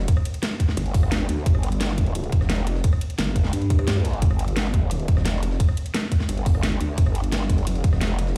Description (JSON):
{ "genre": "dark technical drum and bass", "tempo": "174 BPM", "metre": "4/4", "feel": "straight", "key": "unclear", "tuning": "A4 = 442 Hz", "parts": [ { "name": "growl bass", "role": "bass", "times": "0.0-8.3 s", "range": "F1 to G2", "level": "-26 LUFS", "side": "equal", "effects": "chorus, sidechain pumping" }, { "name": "jungle sampler-style drum kit", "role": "drums", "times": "0.0-8.4 s", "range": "hi-hat, ride cymbal, snare drum", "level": "-40 LUFS", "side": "equal", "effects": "high-pass filter on cymbals, studio reverb, high-pass filter on snare, high-pass filter on hats" }, { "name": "dubstep drum kit", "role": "drums", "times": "0.1-8.3 s", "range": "hi-hat, rim click, snare drum", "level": "-31 LUFS", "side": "equal", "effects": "studio reverb" }, { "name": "electronic kick drum", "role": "drums", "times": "0.1-7.9 s", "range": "none", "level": "-22 LUFS", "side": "equal", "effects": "overdrive, studio reverb" } ], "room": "digital ambience", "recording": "played on a big sound system in a bare room, large studio reverb", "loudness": "-22 LUFS", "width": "mono", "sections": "0.0-8.4 A section", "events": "none", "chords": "none" }